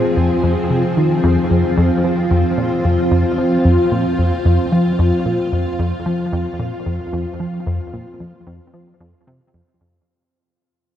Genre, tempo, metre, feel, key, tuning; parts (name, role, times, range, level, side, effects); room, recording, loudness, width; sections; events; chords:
ambient; 112 BPM; 4/4; straight; F minor; A4 = 440 Hz
string machine, full ensemble; sustained chords; 0.0-10.1 s; F3 to Ab4; -18 LUFS; equal; ensemble chorus, shimmer reverb
tight sequenced synth; riff; 0.0-10.0 s; F2 to F3; -17 LUFS; equal; chorus, cassette tape, tape echo
wet huge ambient reverb, RT60 7.6 s; dark, warm production; -15 LUFS; side -10 dB against mid
0.0-10.1 A section
fade-out 4.4-10.1
0.0 Fm